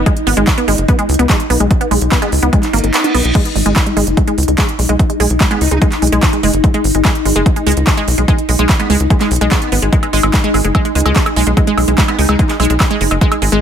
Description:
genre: psychedelic trance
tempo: 146 BPM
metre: 4/4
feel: straight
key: G# minor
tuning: A4 = 440 Hz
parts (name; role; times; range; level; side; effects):
- swarming drone; sustained chords; 0.0-13.6 s; D#4; -19 LUFS; left 1 dB; built-in reverb, sidechain pumping
- wide unison pluck; riff; 0.0-13.6 s; G#3 to D#4; -17 LUFS; right 1 dB; auto-pan, cassette tape, sidechain pumping, ping-pong delay
- tight sequencer bass; bass; 0.0-13.6 s; F#1 to C#2; -15 LUFS; equal; tube saturation
- big-room dance drum kit; drums; 0.1-13.6 s; crash cymbal, handclaps, hi-hat, woodblock; -19 LUFS; right 1 dB; none
- electronic kick drum; drums; 0.1-13.3 s; none; -13 LUFS; equal; none
- metallic wobble bass; second line; 2.2-5.8, 8.8-12.4 s; B3 to D#4; -27 LUFS; right 4 dB; ensemble chorus, sidechain pumping, high-pass filter, dub echo
- reverse cymbal; sound effects; 2.7-3.4 s; none; -24 LUFS; right 1 dB; none
room: little or no reverb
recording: none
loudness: -11 LUFS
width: side -8 dB against mid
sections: 0.0-13.6 A section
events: filter sweep on synth arpeggio sound 0.0-13.6; reverse cymbal 2.7-3.4; kick drops out 2.9-3.4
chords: 0.0 G#5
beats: | 0.06 0.47 0.89 1.29 | 1.71 2.12 2.53 2.94 | 3.35 3.76 4.17 4.58 | 4.99 5.41 5.82 6.23 | 6.64 7.05 7.46 7.87 | 8.28 8.69 9.10 9.52 | 9.93 10.34 10.75 11.16 | 11.57 11.98 12.39 12.80 | 13.21

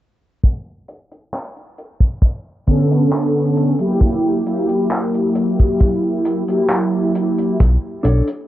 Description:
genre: vaporwave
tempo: 67 BPM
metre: 4/4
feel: straight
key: B minor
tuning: A4 = 440 Hz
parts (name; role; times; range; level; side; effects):
- kick drum; drums; 0.4-7.8 s; none; -14 LUFS; equal; none
- cloth-damped thuddy drum kit; drums; 0.5-8.5 s; handclaps, hi-hat; -28 LUFS; equal; low-pass filter on hats, low-pass filter on snare, low-pass filter on room
- mellow synth brass; accompaniment; 2.7-7.6 s; D3 to A4; -16 LUFS; equal; lush chorus, tape echo
- chorused synth bass; bass; 7.6-8.2 s; B1; -14 LUFS; equal; none
- mellow electric guitar; riff; 8.0-8.3 s; D4 to C#5; -20 LUFS; equal; wide subtle chorus
room: light reverb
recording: worn, warbling old tape, cassette tape, warbly pitch drift, low-pass filter, nothing above 8.0 kHz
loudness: -15 LUFS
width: side -14 dB against mid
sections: 0.4-8.5 A section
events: filter sweep on drum 0.4-8.5; filter sweep 0.4-8.5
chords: 0.4 Bm9; 4.0 F#7b9; 7.6 Bm9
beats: | 0.44 1.33 2.23 3.12 | 4.02 4.92 5.81 6.71 | 7.60

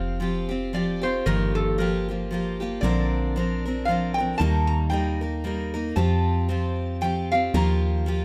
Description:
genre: acoustic folk duo or small band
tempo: 115 BPM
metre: 3/4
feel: swing 57% on 8ths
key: unclear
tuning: A4 = 440 Hz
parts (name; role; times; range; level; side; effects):
- metal-body resonator slide guitar; melody; 0.0-8.2 s; A4 to Bb5; -30 LUFS; equal; plate reverb
- picked steel-string acoustic guitar; accompaniment; 0.0-8.2 s; G2 to Bb4; -28 LUFS; equal; none
- woody FM bass; bass; 0.0-8.2 s; F1 to F2; -29 LUFS; equal; none
room: light reverb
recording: close, detailed microphones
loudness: -25 LUFS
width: mono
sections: 0.0-8.2 A section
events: none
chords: 0.0 Fsus2; 1.3 Ebadd9/G; 2.8 Bbadd9; 4.4 Eb; 6.0 Fsus2; 7.5 Ebadd9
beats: 0.21 0.73 | 1.26 1.78 2.31 | 2.83 3.35 3.88 | 4.40 4.92 5.45 | 5.97 6.50 7.02 | 7.54 8.07

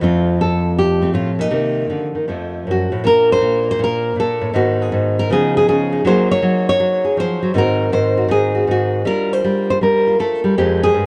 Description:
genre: solo jazz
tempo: 160 BPM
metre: 4/4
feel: swing 66% on 8ths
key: F major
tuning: A4 = 440 Hz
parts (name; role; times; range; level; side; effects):
- nylon-string guitar; solo; 0.0-11.1 s; F2 to Db5; -17 LUFS; equal; none
room: light reverb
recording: worn, warbling old tape, cassette tape, warbly pitch drift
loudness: -17 LUFS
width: mono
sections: 0.0-3.0 A section; 3.0-11.1 B section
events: none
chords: 0.0 Fadd9; 1.5 Cm7; 2.3 F7b9; 3.0 Bbmaj9; 4.5 Abm7; 5.3 Db9; 6.0 Gb69; 7.5 Ab9; 9.1 Gm9; 10.6 Fm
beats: | 0.02 0.40 0.78 1.15 | 1.53 1.91 2.28 2.66 | 3.04 3.41 3.79 4.16 | 4.54 4.92 5.29 5.67 | 6.04 6.42 6.79 7.17 | 7.55 7.92 8.30 8.68 | 9.05 9.43 9.80 10.18 | 10.56 10.93

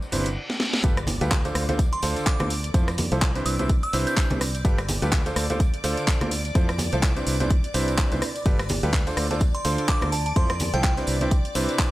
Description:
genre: piano house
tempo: 126 BPM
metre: 4/4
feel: swing 57% on 16ths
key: D dorian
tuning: A4 = 440 Hz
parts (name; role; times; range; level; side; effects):
- string machine, violins; sustained chords; 0.0-11.9 s; D5 to D6; -36 LUFS; left 1 dB; ensemble chorus, sidechain pumping
- tambourine and congas; percussion; 0.0-11.9 s; none; -33 LUFS; equal; none
- reverse cymbal and impact; sound effects; 0.1-2.7 s; none; -34 LUFS; equal; none
- clear concert grand piano; riff; 0.1-11.9 s; C3 to C5; -28 LUFS; right 1 dB; sidechain pumping
- fingered electric bass; bass; 0.1-11.7 s; G1 to F2; -27 LUFS; equal; sidechain pumping
- house drum kit; drums; 0.1-11.9 s; handclaps, hi-hat, rim click, snare drum; -29 LUFS; equal; none
- electronic kick drum; drums; 0.8-11.9 s; none; -22 LUFS; equal; none
- glassy synth bell; melody; 1.9-4.3, 9.5-11.1 s; G5 to G6; -31 LUFS; right 2 dB; chorus, tape echo
room: digital ambience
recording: dry, gritty hardware recording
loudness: -21 LUFS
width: side -17 dB against mid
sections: 0.8-11.9 A section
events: reverse cymbal 0.1-0.8; drum fill 0.5-0.8; drop 0.8-11.9; impact 0.8-2.7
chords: 0.0 Cmaj9; 0.8 G9; 1.6 Dm7; 2.7 Fmaj7; 3.5 Cmaj9; 4.6 G9; 5.4 Dm7; 6.6 Fmaj7; 7.3 Cmaj9; 8.5 G9; 9.2 Dm7; 10.4 Fmaj7; 11.1 Cmaj9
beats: 0.36 | 0.84 1.31 1.79 2.27 | 2.74 3.22 3.69 4.17 | 4.65 5.12 5.60 6.08 | 6.55 7.03 7.50 7.98 | 8.46 8.93 9.41 9.88 | 10.36 10.84 11.31 11.79

